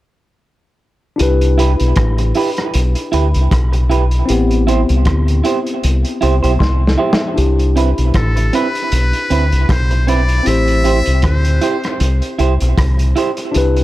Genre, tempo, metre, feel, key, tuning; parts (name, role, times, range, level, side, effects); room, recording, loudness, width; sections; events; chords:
lovers rock reggae; 78 BPM; 4/4; swing 56% on 16ths; A4 = 441 Hz
tine electric piano; accompaniment; 1.2-13.8 s; B3 to C6; -20 LUFS; left 3 dB
deep dub fingered electric bass; bass; 1.2-13.8 s; A1 to D2; -14 LUFS; equal
vintage drum kit; drums; 1.2-13.8 s; hi-hat, kick drum, rim click, snare drum; -20 LUFS; equal
electric guitar at the edge of break-up; stabs; 1.6-13.4 s; C4 to C5; -20 LUFS; right 5 dB; tape echo
trumpet with metal mute; melody; 8.2-12.0 s; A4 to E5; -21 LUFS; left 1 dB; tape echo
light reverb, small room ambience; dark, warm production; -12 LUFS; side -16 dB against mid
1.2-7.4 A section; 7.4-13.8 B section
tine electric piano fill 6.2-7.4; drum fill 6.6-7.4
1.2 Am7